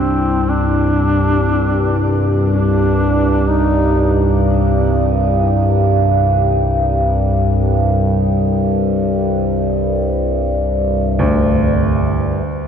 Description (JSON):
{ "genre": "ambient", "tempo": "free time", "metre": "none", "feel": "none", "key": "C minor", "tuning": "A4 = 440 Hz", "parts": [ { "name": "warm duduk", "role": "melody", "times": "0.0-4.2 s", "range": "C4 to Eb4", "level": "-20 LUFS", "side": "equal", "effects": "shimmer reverb, diffuse ambient delay" }, { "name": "clear baby grand piano", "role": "arpeggios", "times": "0.0-12.7 s", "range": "D2 to G4", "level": "-18 LUFS", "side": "right 2 dB", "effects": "none" }, { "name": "overtone-sweeping drone", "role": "drone", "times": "0.0-12.7 s", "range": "C2 to G2", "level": "-14 LUFS", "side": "equal", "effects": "chorus, built-in reverb" } ], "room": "wet cathedral reverb, RT60 6.2 s", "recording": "cassette tape", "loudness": "-13 LUFS", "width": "side -8 dB against mid", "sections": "0.0-12.5 A section", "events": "fade-in on grand piano 0.0-12.5", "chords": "0.0 Csus2", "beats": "free time" }